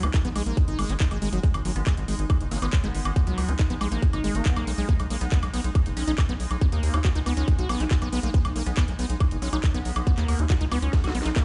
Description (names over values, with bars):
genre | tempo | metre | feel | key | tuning
psychedelic trance | 139 BPM | 4/4 | straight | G# minor | A4 = 437 Hz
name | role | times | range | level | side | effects
pulsing gated texture | sustained chords | 0.0-11.4 s | G#3 to D#4 | -38 LUFS | equal | chorus, built-in reverb, sidechain pumping
liquid acid bass | riff | 0.0-11.4 s | F#3 to F#4 | -34 LUFS | equal | chorus, sidechain pumping, digital delay
round analog bass | bass | 0.0-11.3 s | F#1 to D#2 | -29 LUFS | equal | none
drum and bass drum kit | drums | 0.0-11.4 s | handclaps, hi-hat, snare drum, woodblock | -36 LUFS | equal | none
electronic kick drum | drums | 0.1-11.4 s | none | -23 LUFS | equal | none
metallic wobble bass | second line | 1.8-10.3 s | F#3 to C#4 | -43 LUFS | equal | analog chorus, sidechain pumping, high-pass filter, delay
room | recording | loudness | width
digital ambience | played on a big sound system in a bare room, stone room reverb, nothing above 11.0 kHz | -25 LUFS | mono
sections
0.0-11.4 A section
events
drum fill 10.9-11.4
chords
0.0 G#5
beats
0.14 0.57 1.00 | 1.44 1.87 2.30 2.73 | 3.16 3.59 4.03 4.46 | 4.89 5.32 5.75 6.18 | 6.62 7.05 7.48 7.91 | 8.34 8.77 9.21 9.64 | 10.07 10.50 10.93 11.36